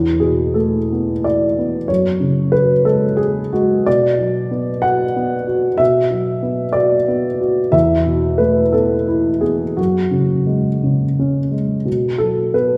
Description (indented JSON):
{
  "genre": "neoclassical minimalist piano",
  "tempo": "56-63 BPM (dotted quarters)",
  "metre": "6/8",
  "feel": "rubato",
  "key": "B dorian",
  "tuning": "A4 = 440 Hz",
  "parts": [
    { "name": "dark upright piano", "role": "solo", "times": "0.0-12.8 s", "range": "E2 to F#5", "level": "-17 LUFS", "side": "equal", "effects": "none" }
  ],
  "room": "wet recital hall reverb, RT60 1.6 s",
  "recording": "recorded in a church or concert hall",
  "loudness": "-17 LUFS",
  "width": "mono",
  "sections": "0.0-11.9 A section",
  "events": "none",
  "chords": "0.0 Esus4; 1.9 F#sus2; 3.9 Bm; 7.7 Esus4; 9.8 F#sus2; 11.9 B5"
}